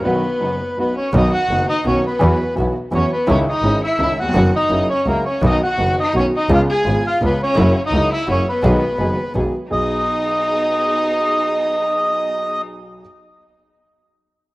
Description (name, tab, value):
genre	tango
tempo	168 BPM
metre	3/4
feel	rubato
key	B major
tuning	A4 = 437 Hz
part	bandoneon	melody	0.0-12.6 s	A#4 to G#5	-20 LUFS	right 1 dB	cassette tape
part	rich violin	second line	0.0-12.6 s	A#3 to G#4	-23 LUFS	left 1 dB	cassette tape
part	warm grand piano	accompaniment	0.0-13.0 s	F#1 to G#4	-21 LUFS	equal	cassette tape
part	dark studio string section	stabs	0.1-12.6 s	A#3 to G#4	-28 LUFS	right 1 dB	cassette tape
part	clear double bass	bass	1.1-9.9 s	F#1 to E2	-19 LUFS	equal	none
room	light reverb, small room ambience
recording	home recording on cassette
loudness	-15 LUFS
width	side -20 dB against mid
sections	0.0-1.1 A section; 1.1-9.7 B section; 9.7-11.8 C section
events	break 0.0-1.1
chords	0.0 B; 2.2 Esus2; 3.3 C#madd9; 4.3 B/F#; 4.7 F#7; 5.4 B; 6.5 C#7; 7.6 F#7; 8.6 B6